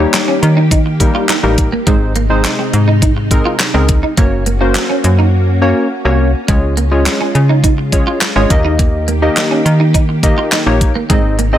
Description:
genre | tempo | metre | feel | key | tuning
dance-pop | 104 BPM | 4/4 | straight | unclear | A4 = 439 Hz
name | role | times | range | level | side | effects
warm analog keys | accompaniment | 0.0-11.6 s | G3 to Eb5 | -16 LUFS | left 1 dB | chorus, sidechain pumping
soft string machine | sustained chords | 0.0-11.6 s | C3 to G4 | -21 LUFS | left 1 dB | ensemble chorus, sidechain pumping
clean electric guitar | riff | 0.0-11.6 s | Ab3 to F4 | -19 LUFS | right 4 dB | ensemble chorus
slap-like FM bass | bass | 0.0-11.6 s | Gb1 to Eb3 | -13 LUFS | equal | sidechain pumping
pop drum kit | drums | 0.1-11.5 s | handclaps, hi-hat, kick drum, snare drum | -14 LUFS | equal | none
room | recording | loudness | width
little or no reverb | none | -10 LUFS | side -11 dB against mid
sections
0.0-11.6 A section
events
drums muted 5.3-6.5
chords
0.0 Eb; 1.9 Ab; 4.2 Gb; 6.5 Db; 8.5 Eb

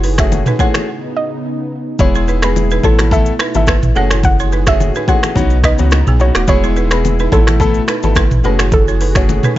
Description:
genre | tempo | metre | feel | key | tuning
afrobeats | 107 BPM | 4/4 | swing 55% on 16ths | unclear | A4 = 440 Hz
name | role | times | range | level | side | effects
warm analog pad | sustained chords | 0.0-9.6 s | A2 to G#4 | -24 LUFS | equal | chorus
balafon | riff | 0.0-9.5 s | A3 to C#5 | -22 LUFS | right 5 dB | digital delay
warm sub bass | bass | 0.0-9.4 s | D#1 to C#2 | -15 LUFS | equal | none
afro-pop drum kit | drums | 0.0-9.6 s | finger snaps, hi-hat, kick drum, rim click, shaker, toms | -15 LUFS | equal | none
soft round pluck | melody | 0.2-9.4 s | A4 to F#5 | -20 LUFS | equal | chorus, digital delay
warm grand piano | accompaniment | 0.2-9.6 s | G#3 to A4 | -20 LUFS | left 4 dB | none
bongos and congas | percussion | 0.3-9.4 s | none | -23 LUFS | left 5 dB | none
room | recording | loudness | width
little or no reverb | nothing above 7.7 kHz | -11 LUFS | side -14 dB against mid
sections
0.0-9.6 A section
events
break 0.9-2.0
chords
0.0 F#madd9; 0.9 Badd9; 2.0 E; 2.8 Asus2; 4.0 F#madd9; 5.4 Badd9; 6.5 E; 7.3 Asus2; 8.4 F#madd9

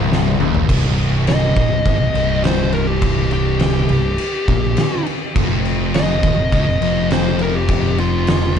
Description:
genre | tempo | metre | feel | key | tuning
stoner and doom metal | 103 BPM | 4/4 | straight | C minor | A4 = 439 Hz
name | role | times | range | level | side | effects
overdriven electric guitar | riff | 0.0-0.7 s | C2 to Eb2 | -22 LUFS | left 2 dB | none
thick fuzz guitar | riff | 0.0-8.6 s | C2 to Db3 | -22 LUFS | left 10 dB | distortion
thick fuzz guitar | riff | 0.0-8.6 s | C2 to Db3 | -22 LUFS | right 9 dB | distortion
fuzz fingered electric bass | bass | 0.0-8.6 s | C1 to Db2 | -22 LUFS | equal | overdrive, tube saturation
oversized low-tuned drum kit | drums | 0.1-8.6 s | crash cymbal, kick drum, snare drum, toms | -19 LUFS | equal | none
fuzz lead guitar | melody | 1.3-8.6 s | F4 to Eb5 | -22 LUFS | left 1 dB | distortion, ping-pong delay
room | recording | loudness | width
small room ambience | dark, warm production, nothing above 10.8 kHz | -14 LUFS | side -8 dB against mid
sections
0.7-8.6 A section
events
drum fill 0.1-0.7; lead electric guitar solo 0.7-8.6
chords
0.0 Eb5; 0.7 Cm; 5.4 Eb7sus2

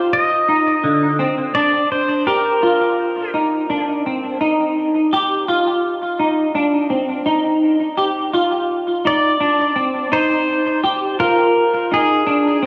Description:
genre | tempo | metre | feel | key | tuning
dream pop | 84 BPM | 4/4 | straight | unclear | A4 = 440 Hz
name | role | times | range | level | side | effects
pedal steel guitar | melody | 0.0-3.3, 9.1-12.7 s | Ab4 to Eb5 | -20 LUFS | equal | analog delay
semi-hollow electric guitar | arpeggios | 0.0-12.7 s | D3 to G4 | -19 LUFS | equal | ensemble chorus, analog delay
room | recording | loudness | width
wet echo chamber reverb, RT60 1.6 s, digital ambience | echo-heavy mix, small room ambience | -17 LUFS | mono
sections
0.0-12.7 A section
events
none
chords
0.0 Ebmaj7sus2; 1.6 F7sus2

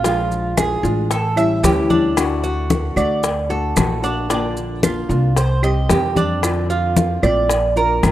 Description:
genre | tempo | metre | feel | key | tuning
latin, Cuban son and guajira | 113 BPM | 4/4 | straight | unclear | A4 = 440 Hz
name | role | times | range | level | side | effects
nylon-string guitar | accompaniment | 0.0-8.1 s | C3 to G4 | -22 LUFS | left 3 dB | none
Cuban tres | arpeggios | 0.0-8.1 s | D4 to E5 | -20 LUFS | right 4 dB | none
upright bass | bass | 0.0-8.1 s | G1 to F2 | -21 LUFS | equal | none
bongos | percussion | 0.0-8.1 s | none | -26 LUFS | left 6 dB | none
congas | percussion | 0.0-8.1 s | none | -21 LUFS | left 3 dB | none
maracas | percussion | 0.0-8.1 s | none | -29 LUFS | right 3 dB | none
claves | percussion | 0.6-8.1 s | none | -29 LUFS | right 4 dB | none
room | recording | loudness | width
light reverb, small room ambience | rough home demo mix | -15 LUFS | side -13 dB against mid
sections
0.0-8.1 A section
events
none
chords
0.0 Bb7; 1.1 A7; 2.2 D; 4.3 Bb; 5.4 Cm; 6.4 F6; 7.5 Bb

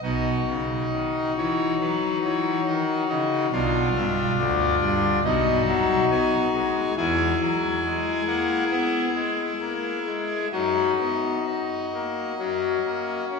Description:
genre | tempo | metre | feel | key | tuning
classical, chorale-style piece for pipe organ | 69 BPM | 4/4 | uneven beats, rubato | B major | A4 = 445 Hz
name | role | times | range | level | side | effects
pipe organ, trumpet | solo | 0.0-13.4 s | B1 to G#5 | -22 LUFS | left 2 dB | none
room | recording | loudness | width
wet church reverb, RT60 3.2 s | heard from further back in the room, small room ambience | -21 LUFS | side -4 dB against mid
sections
0.0-13.4 A section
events
none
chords
0.0 B; 3.5 Bdim; 5.3 B; 7.0 E; 10.5 B/F#; 12.4 F#

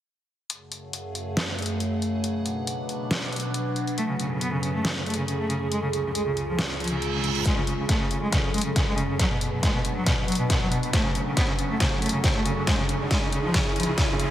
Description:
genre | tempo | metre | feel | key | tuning
heavy wobble dubstep | 138 BPM | 4/4 | half-time | F# harmonic minor | A4 = 441 Hz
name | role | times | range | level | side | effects
evolving wavetable pad | sustained chords | 0.8-14.3 s | C#2 to F#5 | -30 LUFS | equal | phaser, built-in reverb, sidechain pumping
dubstep drum kit | drums | 0.5-14.3 s | hi-hat, snare drum | -29 LUFS | equal | high-pass filter on hats, high-pass filter on snare, high-pass filter on room
rich cello | melody | 4.0-14.3 s | B2 to B3 | -27 LUFS | equal | tape echo
reverse cymbal and riser | sound effects | 6.8-14.3 s | none | -35 LUFS | right 4 dB | none
electronic kick drum | drums | 7.5-14.1 s | none | -25 LUFS | equal | none
room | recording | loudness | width
moderate lush hall reverb, RT60 1.9 s, digital ambience | heavily compressed radio sound, multiband compression | -23 LUFS | side -12 dB against mid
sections
0.5-7.5 A section; 7.5-14.3 B section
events
reverse cymbal 6.8-7.5; build-up 7.5-14.3; drum fill 7.5-14.3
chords
0.5 F#madd9; 2.2 Bm; 4.0 F#madd9; 5.7 C#; 7.5 F#madd9; 9.2 Bm; 10.9 F#madd9; 12.7 C#

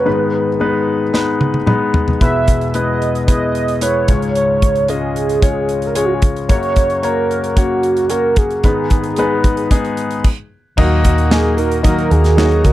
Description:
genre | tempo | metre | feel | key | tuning
piano-driven pop | 112 BPM | 4/4 | straight | G# minor | A4 = 440 Hz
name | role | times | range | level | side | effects
warm velvety synth lead | melody | 0.0-12.7 s | F#4 to E5 | -18 LUFS | right 3 dB | chorus
warm concert grand piano | accompaniment | 0.0-12.7 s | C#2 to D#5 | -17 LUFS | left 3 dB | none
modern studio drum kit | drums | 1.1-12.7 s | crash cymbal, hi-hat, kick drum, snare drum, toms | -15 LUFS | equal | none
airy breathy pad | sustained chords | 10.8-12.7 s | D#3 to A#4 | -25 LUFS | equal | none
fingerpicked plugged-in steel-string acoustic guitar | riff | 10.8-12.7 s | D#3 to A#4 | -22 LUFS | right 5 dB | none
vintage muted fingered electric bass | bass | 10.8-12.7 s | C#2 to D#2 | -14 LUFS | equal | none
room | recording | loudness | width
little or no reverb | dry, close 1970s-style studio recording | -13 LUFS | side -14 dB against mid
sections
0.0-10.8 A section; 10.8-12.7 B section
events
drum fill 1.1-2.2; stop 10.2-10.8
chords
0.1 G#m; 2.2 E; 4.1 C#; 6.5 F#; 8.6 G#m; 10.8 D#m

